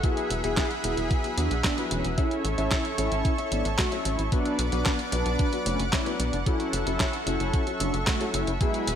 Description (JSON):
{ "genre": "italo disco", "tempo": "112 BPM", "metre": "4/4", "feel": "straight", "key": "unclear", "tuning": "A4 = 435 Hz", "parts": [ { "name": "mellow synth brass", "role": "melody", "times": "0.0-8.9 s", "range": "E3 to G#4", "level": "-31 LUFS", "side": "equal", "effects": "chorus, vintage 12-bit sampler grit, digital delay" }, { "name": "lush unison pad", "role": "sustained chords", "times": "0.0-9.0 s", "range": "G#4 to D6", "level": "-32 LUFS", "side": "equal", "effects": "chorus" }, { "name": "warm concert grand piano", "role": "stabs", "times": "0.0-9.0 s", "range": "F#3 to E5", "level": "-33 LUFS", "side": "left 5 dB", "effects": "none" }, { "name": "clean 12-bit digital drum machine", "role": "drums", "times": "0.0-9.0 s", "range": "handclaps, hi-hat, snare drum", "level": "-31 LUFS", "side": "right 1 dB", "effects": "none" }, { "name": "electronic kick drum", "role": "drums", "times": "0.0-8.7 s", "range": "none", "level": "-27 LUFS", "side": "equal", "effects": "none" }, { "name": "tight sequencer bass", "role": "bass", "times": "0.3-9.0 s", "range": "E1 to E2", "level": "-29 LUFS", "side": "equal", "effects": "none" } ], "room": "light reverb", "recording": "bright 1980s-style digital production", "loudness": "-24 LUFS", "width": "side -9 dB against mid", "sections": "0.0-9.0 A section", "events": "none", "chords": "0.0 Eadd9; 2.2 A; 4.3 Bm; 6.5 F#m7" }